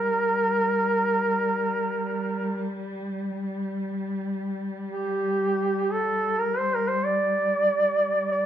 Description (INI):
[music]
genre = caucasian folk, Caucasian lament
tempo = free time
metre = none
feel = none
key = G minor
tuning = A4 = 440 Hz
[part]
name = warm duduk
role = melody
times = 0.0-8.5 s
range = G4 to D5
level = -23 LUFS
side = right 1 dB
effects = none
[part]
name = dark chamber cello section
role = drone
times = 0.0-8.5 s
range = G3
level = -30 LUFS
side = equal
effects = none
[sound]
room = moderate recital hall reverb, RT60 1.5 s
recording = none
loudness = -23 LUFS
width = side -10 dB against mid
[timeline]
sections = 0.0-8.5 A section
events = none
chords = none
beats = free time